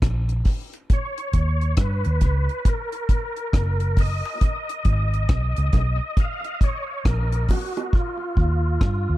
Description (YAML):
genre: dub reggae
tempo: 68 BPM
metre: 4/4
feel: swing 64% on 16ths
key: unclear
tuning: A4 = 440 Hz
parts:
  - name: vintage muted fingered electric bass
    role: bass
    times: 0.0-9.2 s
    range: F#1 to G2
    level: -21 LUFS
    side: equal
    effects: none
  - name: deep reggae drum kit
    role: drums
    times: 0.0-9.1 s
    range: hi-hat, kick drum, rim click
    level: -21 LUFS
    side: equal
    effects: none
  - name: bongos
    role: percussion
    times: 0.5-7.9 s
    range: none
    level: -35 LUFS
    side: right 6 dB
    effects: high-pass filter on perc, dub echo
  - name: tonewheel organ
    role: melody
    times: 0.9-9.2 s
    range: E#4 to E#5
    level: -29 LUFS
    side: equal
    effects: chorus vibrato, fast rotary speaker, dub echo
room: studio reverb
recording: dark, warm production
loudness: -20 LUFS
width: side -16 dB against mid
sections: 0.0-9.2 A section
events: filter sweep on drum 0.0-4.4; hi-hats muted 7.9-9.2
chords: 0.0 N.C.; 0.9 D#; 2.7 F#; 4.4 G#m; 6.2 A#m; 7.9 D#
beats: 0.02 | 0.90 1.77 2.65 3.53 | 4.41 5.29 6.17 7.05 | 7.93 8.81